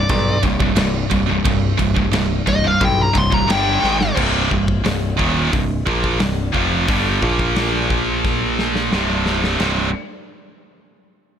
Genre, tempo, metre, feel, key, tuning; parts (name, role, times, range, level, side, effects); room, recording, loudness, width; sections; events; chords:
heavy metal; 88 BPM; 4/4; straight; C minor; A4 = 440 Hz
high-gain lead guitar; melody; 0.0-4.2 s; D5 to C6; -21 LUFS; left 2 dB; distortion, tape echo
scooped high-gain guitar; riff; 0.0-9.9 s; C2 to Bb3; -22 LUFS; left 8 dB; distortion
scooped high-gain guitar; riff; 0.0-9.9 s; C2 to Bb3; -21 LUFS; right 11 dB; distortion
modern bright picked electric bass; bass; 0.0-9.9 s; C1 to B1; -22 LUFS; equal
big rock drum kit; drums; 0.1-9.8 s; crash cymbal, hi-hat, kick drum, ride cymbal, snare drum; -22 LUFS; equal
studio ambience; -15 LUFS; side -8 dB against mid
0.0-4.2 A section; 4.2-9.6 B section; 9.6-11.4 C section
lead electric guitar solo 0.0-4.2; drum fill 3.8-4.2, 8.2-9.6
0.0 C5; 3.5 G5; 3.8 Ab5; 4.2 Cm; 7.2 Bb5; 8.9 C5